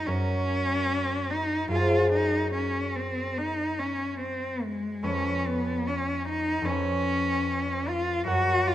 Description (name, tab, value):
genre	classical, romantic duo for cello and harp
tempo	73 BPM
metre	4/4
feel	rubato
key	unclear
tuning	A4 = 442 Hz
part	rich cello	melody	0.0-8.7 s	G#3 to F#4	-27 LUFS	left 1 dB	none
part	concert harp	accompaniment	0.0-8.7 s	E#2 to G#5	-29 LUFS	equal	none
room	light reverb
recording	close, detailed microphones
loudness	-25 LUFS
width	side -12 dB against mid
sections	0.0-8.7 A section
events	none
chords	0.0 F#; 1.7 G#7/F#; 5.0 C#7/E#